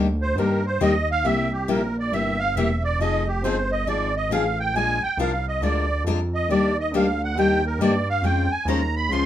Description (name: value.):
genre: acoustic string swing (jazz manouche).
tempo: 137 BPM.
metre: 4/4.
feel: swing 64% on 8ths.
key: Eb major.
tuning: A4 = 440 Hz.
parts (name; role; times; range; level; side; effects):
picked steel-string acoustic guitar; accompaniment; 0.0-9.3 s; C3 to C5; -23 LUFS; left 4 dB; none.
fat analog bass; bass; 0.0-9.3 s; E1 to G2; -25 LUFS; equal; none.
musette accordion; melody; 0.2-9.3 s; G4 to C6; -24 LUFS; right 3 dB; none.
room: wet studio ambience, RT60 0.5 s.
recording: minimal, uncompressed stereo recording.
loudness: -20 LUFS.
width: side -11 dB against mid.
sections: 0.0-9.3 A section.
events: accordion solo 0.0-9.3.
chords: 0.0 Ebmaj7; 1.3 C7; 3.0 Fm7; 4.8 Bb7; 6.5 Ebmaj7; 8.2 Dbmaj7.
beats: 0.38 0.81 | 1.25 1.69 2.13 2.56 | 3.00 3.44 3.88 4.31 | 4.75 5.19 5.62 6.06 | 6.50 6.93 7.37 7.81 | 8.24 8.68 9.12.